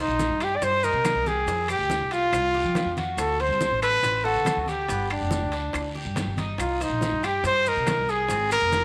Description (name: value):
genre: latin, Cuban son and guajira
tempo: 140 BPM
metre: 4/4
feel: straight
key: C minor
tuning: A4 = 439 Hz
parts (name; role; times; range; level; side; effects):
- warm trumpet; melody; 0.0-8.8 s; D4 to D5; -26 LUFS; equal; none
- Cuban tres; arpeggios; 0.0-8.8 s; B3 to C5; -36 LUFS; equal; none
- upright bass; bass; 0.0-8.8 s; F1 to F3; -34 LUFS; equal; none
- bongos; percussion; 0.2-8.8 s; none; -39 LUFS; equal; none
- congas; percussion; 0.2-8.8 s; none; -37 LUFS; equal; none
- guiro; percussion; 0.2-8.8 s; none; -44 LUFS; equal; none
- maracas; percussion; 0.2-8.8 s; none; -44 LUFS; equal; none
- timbales; percussion; 0.2-8.8 s; none; -39 LUFS; equal; none
- claves; percussion; 0.4-8.7 s; none; -38 LUFS; equal; none
room: moderate echo chamber reverb, RT60 1.9 s, small room ambience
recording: none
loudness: -25 LUFS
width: mono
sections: 0.0-8.8 A section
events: none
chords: 0.0 Cm7; 1.5 Fsus2; 3.2 D7; 4.9 G; 6.6 Cm7; 8.3 Ab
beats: 0.19 0.62 1.05 | 1.47 1.90 2.33 2.75 | 3.18 3.61 4.03 4.46 | 4.89 5.32 5.74 6.17 | 6.60 7.02 7.45 7.88 | 8.30 8.73